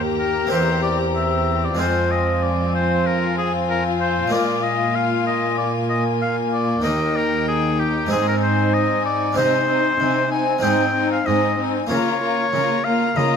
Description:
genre	classical, baroque-style concerto movement with solo episodes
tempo	95 BPM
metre	4/4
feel	straight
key	Eb major, Ab major from 9.4 s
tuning	A4 = 440 Hz
part	rich chamber violin section	melody	0.0-13.4 s	G5 to Bb5	-29 LUFS	left 8 dB	none
part	warm chamber violin section	second line	0.0-13.4 s	Eb4 to G4	-25 LUFS	left 7 dB	none
part	harpsichord	accompaniment	0.0-13.4 s	Eb2 to G4	-26 LUFS	right 2 dB	none
part	rich chamber viola section	accompaniment	0.0-13.4 s	Bb3 to C4	-25 LUFS	right 4 dB	none
part	rich studio cello section	bass	0.0-13.4 s	Eb2 to Db3	-25 LUFS	right 3 dB	none
part	clear oboe	melody	0.2-13.4 s	G4 to Ab5	-23 LUFS	left 2 dB	none
room	moderate recital hall reverb, RT60 1.3 s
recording	close, detailed microphones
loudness	-17 LUFS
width	side -7 dB against mid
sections	0.0-13.4 A section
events	none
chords	0.0 Eb; 0.5 C7/E; 1.8 Fm; 4.3 Bb5; 6.8 Eb; 8.1 Ab; 9.4 Ab/C; 10.6 Ab; 11.9 Bbm/Db

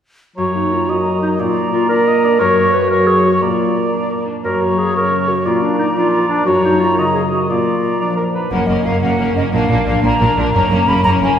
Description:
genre	cinematic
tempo	118 BPM (dotted quarters)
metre	6/8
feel	straight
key	F# major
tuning	A4 = 440 Hz
part	hollow concert flute	second line	0.4-11.4 s	D#5 to C#6	-20 LUFS	equal	none
part	mellow clarinet	second line	0.4-8.3 s	D4 to B4	-17 LUFS	right 1 dB	none
part	mellow cor anglais	second line	0.4-8.5 s	A#4 to D#5	-21 LUFS	right 1 dB	none
part	dark French horn section	sustained chords	0.4-11.4 s	C#3 to D4	-21 LUFS	left 2 dB	none
part	concert harp	arpeggios	0.4-11.4 s	F#2 to A#4	-22 LUFS	left 1 dB	none
part	rich symphonic violin section	melody	8.5-11.4 s	A#4	-23 LUFS	left 5 dB	none
part	rich symphonic violin section	second line	8.5-11.4 s	C#4 to D4	-23 LUFS	left 2 dB	none
part	rich symphonic viola section	accompaniment	8.5-11.4 s	A#3	-22 LUFS	equal	none
part	rich symphonic cello section	bass	8.5-11.3 s	F#2 to A#2	-20 LUFS	right 2 dB	none
part	rich symphonic double bass section	bass	8.5-11.3 s	F#1 to A#1	-20 LUFS	right 2 dB	none
room	wet scoring stage reverb, RT60 2.0 s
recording	heard from further back in the room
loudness	-13 LUFS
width	side -8 dB against mid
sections	0.4-8.5 A section; 8.5-11.4 A section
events	none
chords	0.4 F#; 1.4 A#; 2.4 F#; 3.4 A#; 4.4 F#; 5.5 A#; 6.5 F#; 7.5 A#; 8.5 F#; 9.5 A#; 10.5 F#

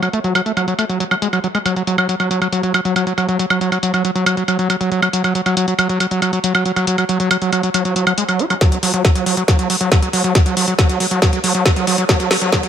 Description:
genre	psychedelic trance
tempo	138 BPM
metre	4/4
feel	straight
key	F# minor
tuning	A4 = 440 Hz
part	screaming distorted acid line	riff	0.0-12.7 s	F#3 to F#4	-17 LUFS	equal	distortion, chorus, auto-pan, sidechain pumping, tape echo
part	drum and bass drum kit	drums	0.0-12.7 s	hi-hat, snare drum, woodblock	-19 LUFS	right 1 dB	low-pass filter on hats, low-pass filter on perc, low-pass filter on snare, low-pass filter on room
part	electronic kick drum	drums	8.6-12.6 s	none	-14 LUFS	equal	none
room	light reverb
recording	high-pass filter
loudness	-14 LUFS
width	side -9 dB against mid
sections	0.0-8.6 A section; 8.6-12.7 B section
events	build-up 8.6-12.7; drum fill 8.6-12.7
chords	none

